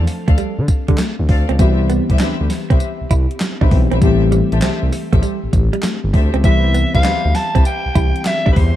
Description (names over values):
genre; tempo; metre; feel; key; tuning
R&B, new jack swing; 99 BPM; 4/4; swing 67% on 16ths; C major; A4 = 441 Hz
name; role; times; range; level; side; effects
mellow FM electric piano; accompaniment; 0.0-8.8 s; E3 to A4; -22 LUFS; left 3 dB; chorus
smooth gliding synth bass; bass; 0.0-8.7 s; G1 to D3; -17 LUFS; equal; none
direct-recorded clean electric guitar; riff; 0.1-8.6 s; G3 to E4; -25 LUFS; right 6 dB; lush chorus
gated 80s digital drum machine; drums; 0.1-8.8 s; handclaps, hi-hat, kick drum, snare drum, tambourine; -16 LUFS; equal; gated reverb, gated reverb snare, overdrive
muted studio string section; stabs; 0.3-8.5 s; G4 to F5; -27 LUFS; left 4 dB; none
growling soprano saxophone; melody; 6.4-8.8 s; B4 to A5; -20 LUFS; left 1 dB; none
room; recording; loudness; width
little or no reverb; dark, warm production; -13 LUFS; side -13 dB against mid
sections
0.0-8.8 A section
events
none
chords
0.0 Dm7; 1.6 Cmaj7; 4.0 Am7; 6.4 Cmaj7